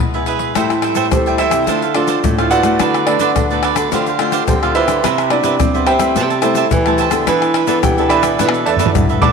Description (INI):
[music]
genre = samba and choro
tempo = 107 BPM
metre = 4/4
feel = straight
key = A minor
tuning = A4 = 440 Hz
[part]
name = nylon-string guitar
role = accompaniment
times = 0.0-9.3 s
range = G2 to A4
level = -21 LUFS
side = left 9 dB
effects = none
[part]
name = cavaquinho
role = accompaniment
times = 0.1-9.3 s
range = D4 to A5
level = -19 LUFS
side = right 10 dB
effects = none
[part]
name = pandeiro, tube shaker, surdo and tamborim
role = percussion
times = 0.1-9.3 s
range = none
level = -18 LUFS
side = left 3 dB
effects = none
[part]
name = nylon-string guitar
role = bass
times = 0.6-9.3 s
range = E2 to C4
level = -20 LUFS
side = right 2 dB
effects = none
[part]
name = warm baby grand piano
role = melody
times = 1.1-9.3 s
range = C4 to D6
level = -17 LUFS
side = right 4 dB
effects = none
[sound]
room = moderate echo chamber reverb, RT60 2.2 s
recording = 1960s-style stereo with parts hard left and right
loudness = -12 LUFS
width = side -5 dB against mid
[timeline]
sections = 0.6-9.3 A section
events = grand piano solo 0.6-9.3; drum fill 8.4-9.3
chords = 0.0 E; 0.6 Am7; 1.7 Dm7; 2.8 Bm7/D; 3.9 G9sus4/D; 5.0 Cmaj7; 6.2 Am7/C; 7.3 E7sus4